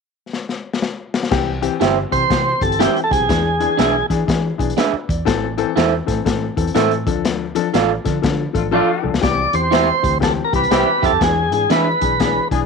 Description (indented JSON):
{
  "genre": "uptempo 1960s-style soul",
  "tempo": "121 BPM",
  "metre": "4/4",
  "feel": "swing 64% on 8ths",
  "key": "C major",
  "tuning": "A4 = 439 Hz",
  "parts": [
    { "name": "crunchy breakbeat drum kit", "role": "drums", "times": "0.3-12.6 s", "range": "crash cymbal, hi-hat, kick drum, snare drum", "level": "-21 LUFS", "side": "left 3 dB", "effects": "none" },
    { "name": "dark upright piano", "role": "accompaniment", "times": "1.3-12.6 s", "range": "E3 to D5", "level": "-22 LUFS", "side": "left 11 dB", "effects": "none" },
    { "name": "vintage muted fingered electric bass", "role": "bass", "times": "1.3-12.7 s", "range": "G1 to E3", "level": "-24 LUFS", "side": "right 2 dB", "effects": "none" },
    { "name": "electric guitar through a small old amp", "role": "stabs", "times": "1.8-11.9 s", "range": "D4 to F5", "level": "-19 LUFS", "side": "right 14 dB", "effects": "none" },
    { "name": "tonewheel organ", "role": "melody", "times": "2.1-4.1, 9.2-12.5 s", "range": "G4 to D5", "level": "-18 LUFS", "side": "right 2 dB", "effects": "slow rotary speaker" },
    { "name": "mellow horn section", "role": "second line", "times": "8.5-12.6 s", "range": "D3 to G#4", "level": "-24 LUFS", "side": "left 11 dB", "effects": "none" }
  ],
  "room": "light reverb, small room reverb",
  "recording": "1960s-style stereo with parts hard left and right",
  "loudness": "-15 LUFS",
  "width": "side -5 dB against mid",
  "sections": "0.0-1.3 A section; 1.3-9.2 B section; 9.2-12.7 C section",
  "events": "drum fill 0.3-1.3, 8.7-9.2; band accent 7.2-9.2",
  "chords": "0.0 N.C.; 1.3 C; 3.3 E7; 5.3 Am; 7.0 Dm; 9.2 C; 11.2 E7"
}